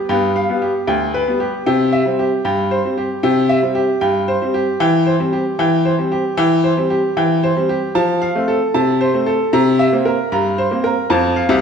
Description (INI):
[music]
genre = ragtime piano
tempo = 76 BPM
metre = 2/4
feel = straight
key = C major, F major from 8.0 s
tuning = A4 = 441 Hz
[part]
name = bright upright piano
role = solo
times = 0.0-11.6 s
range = C2 to Bb5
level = -14 LUFS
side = equal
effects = none
[sound]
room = moderate recital hall reverb, RT60 1.7 s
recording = recorded in a church or concert hall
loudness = -14 LUFS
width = side -6 dB against mid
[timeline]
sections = 0.0-11.6 A section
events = none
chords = 0.0 G7; 1.7 C; 4.8 C/E; 8.0 F; 9.5 C7; 11.1 F